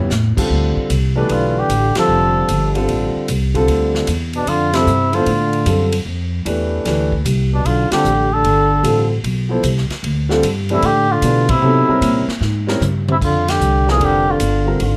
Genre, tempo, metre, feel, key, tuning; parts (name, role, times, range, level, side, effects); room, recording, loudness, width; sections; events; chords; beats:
modal jazz; 151 BPM; 4/4; swing 66% on 8ths; D dorian; A4 = 440 Hz
warm concert grand piano; accompaniment; 0.0-14.8 s; D3 to C5; -22 LUFS; equal
upright bass; bass; 0.0-15.0 s; F1 to C3; -20 LUFS; equal
swinging big-band drum kit; drums; 0.1-14.9 s; crash cymbal, hi-hat, kick drum, ride cymbal, snare drum, toms; -28 LUFS; equal
trumpet with cup mute; melody; 1.2-15.0 s; D4 to A4; -20 LUFS; equal
breathy trombone; second line; 1.2-15.0 s; B2 to F3; -23 LUFS; equal
light reverb; -16 LUFS; mono
0.5-13.2 A section; 13.2-15.0 B section
band accent 1.9, 4.7, 7.9, 11.4, 13.4; drum fill 12.4-13.2
0.0 A7; 0.5 Dm7; 6.9 G; 11.6 C7b9; 13.2 Fsus2
0.11 | 0.51 0.90 1.30 1.70 | 2.09 2.49 2.89 3.29 | 3.68 4.08 4.48 4.87 | 5.27 5.67 6.07 6.46 | 6.86 7.26 7.65 8.05 | 8.45 8.84 9.24 9.64 | 10.04 10.43 10.83 11.23 | 11.62 12.02 12.42 12.81 | 13.21 13.61 14.01 14.40 | 14.80